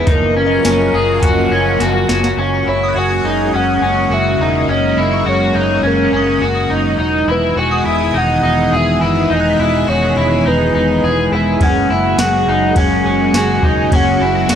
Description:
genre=dream pop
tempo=104 BPM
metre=4/4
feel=straight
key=F# mixolydian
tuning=A4 = 441 Hz
part: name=soft octave-layered synth lead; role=melody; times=0.0-14.6 s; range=A#4 to G#5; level=-19 LUFS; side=left 1 dB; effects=chorus, tape echo
part: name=mellow electric guitar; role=accompaniment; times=0.0-2.4, 11.6-14.6 s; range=F#2 to A#4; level=-25 LUFS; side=right 4 dB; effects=tremolo, analog chorus
part: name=string machine, full ensemble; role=sustained chords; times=0.0-14.6 s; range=B2 to G#4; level=-17 LUFS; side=equal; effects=ensemble chorus
part: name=electric guitar at the edge of break-up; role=arpeggios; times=0.0-14.6 s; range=C#4 to G#4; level=-17 LUFS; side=left 1 dB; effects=lush chorus, tape echo
part: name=vintage muted fingered electric bass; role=bass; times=0.0-14.6 s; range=E1 to F#1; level=-21 LUFS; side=equal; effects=transformer saturation
part: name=shimmering bell with halo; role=texture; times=0.0-11.5 s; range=B4 to B6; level=-28 LUFS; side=equal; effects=ensemble chorus, tape echo
part: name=soft vintage rhythm box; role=drums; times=0.1-2.4, 11.6-14.6 s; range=hi-hat, kick drum, ride cymbal, snare drum, tambourine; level=-17 LUFS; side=equal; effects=overdrive
room=digital ambience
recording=dry, gritty hardware recording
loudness=-12 LUFS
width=side -8 dB against mid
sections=0.0-2.4 A section; 2.4-14.6 B section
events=drum fill 1.8-2.4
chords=0.1 F#maj7; 2.4 F#add9; 7.0 Emaj7; 11.6 F#add9

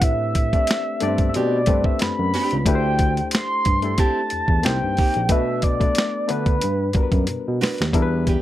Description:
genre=R&B, neo-soul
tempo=91 BPM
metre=4/4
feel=swing 55% on 16ths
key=A dorian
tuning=A4 = 439 Hz
part: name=mellow horn-like synth lead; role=melody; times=0.0-7.3 s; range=B4 to C6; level=-24 LUFS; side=equal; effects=chorus, slapback echo, plate reverb
part: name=barky reed electric piano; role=accompaniment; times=0.0-8.4 s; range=G3 to D5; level=-26 LUFS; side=left 6 dB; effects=overdrive, spring reverb, plate reverb
part: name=barky tine electric piano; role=bass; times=0.0-8.3 s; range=Bb1 to D3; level=-24 LUFS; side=equal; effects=overdrive, analog chorus
part: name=boom bap sampler-style drum kit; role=drums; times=0.0-8.4 s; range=hi-hat, kick drum, snare drum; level=-20 LUFS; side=equal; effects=none
part: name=nylon-string guitar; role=second line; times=1.4-8.4 s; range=Bb3 to B4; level=-27 LUFS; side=right 5 dB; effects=plate reverb
room=light reverb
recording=none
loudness=-18 LUFS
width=side -13 dB against mid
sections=0.0-7.9 A section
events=drum fill 7.3-7.9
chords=0.0 Am11; 2.7 D9sus4; 4.6 Cm7; 5.3 Bm7; 6.6 Gmaj7

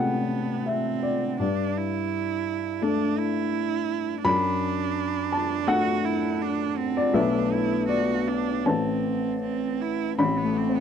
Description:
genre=neoclassical piano and strings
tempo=75-85 BPM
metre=4/4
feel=rubato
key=A dorian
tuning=A4 = 439 Hz
part: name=clear cello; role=second line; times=0.0-10.8 s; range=B3 to F#4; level=-28 LUFS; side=right 15 dB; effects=none
part: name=dark upright piano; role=accompaniment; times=0.0-10.8 s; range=A1 to B5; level=-24 LUFS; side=left 3 dB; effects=none
room=little or no reverb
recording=dry, close 1970s-style studio recording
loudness=-23 LUFS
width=side -8 dB against mid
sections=0.0-10.2 A section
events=none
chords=0.0 Amadd9; 1.4 Gsus2; 4.2 D/F#; 7.1 Bm7; 8.7 Amadd9

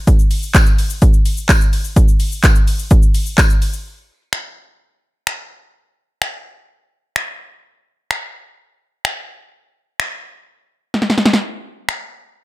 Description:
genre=pop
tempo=127 BPM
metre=4/4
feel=straight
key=none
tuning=none
part: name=house drum kit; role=drums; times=0.1-12.0 s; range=finger snaps, handclaps, hi-hat, kick drum, shaker, snare drum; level=-13 LUFS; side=equal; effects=none
part: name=tambourine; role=percussion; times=0.5-3.5 s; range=none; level=-34 LUFS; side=right 4 dB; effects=none
room=little or no reverb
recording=echo-heavy mix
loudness=-14 LUFS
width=side -18 dB against mid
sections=0.0-3.9 A section; 3.9-12.4 B section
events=drop 0.0-3.9; drum fill 10.9-11.4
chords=none

